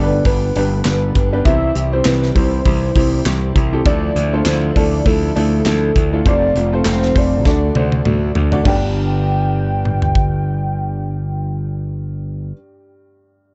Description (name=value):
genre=piano-driven pop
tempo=100 BPM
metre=4/4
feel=swing 56% on 16ths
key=G mixolydian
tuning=A4 = 439 Hz
part: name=warm velvety synth lead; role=melody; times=0.0-11.8 s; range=A4 to G5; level=-25 LUFS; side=equal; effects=chorus
part: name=clear upright piano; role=accompaniment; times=0.0-13.5 s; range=G2 to D5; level=-24 LUFS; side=equal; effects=none
part: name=fingerpicked plugged-in steel-string acoustic guitar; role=riff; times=0.0-12.6 s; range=F2 to G4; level=-26 LUFS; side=equal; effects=none
part: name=overdriven picked electric bass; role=bass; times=0.0-12.5 s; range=F1 to D2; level=-21 LUFS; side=equal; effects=none
part: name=modern studio drum kit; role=drums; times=0.2-10.3 s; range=crash cymbal, handclaps, hi-hat, kick drum, snare drum, toms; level=-20 LUFS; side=equal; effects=none
room=little or no reverb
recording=dark, warm production, nothing above 7.9 kHz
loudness=-16 LUFS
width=mono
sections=0.0-8.7 A section; 8.7-11.1 B section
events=drum fill 7.5-8.7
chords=0.0 G; 1.5 C; 3.9 Dmadd9; 6.3 F; 7.5 D; 8.7 G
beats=0.25 0.85 | 1.46 2.06 2.66 3.26 | 3.86 4.46 5.06 5.66 | 6.26 6.86 7.46 8.05 | 8.65 9.25 9.85 10.45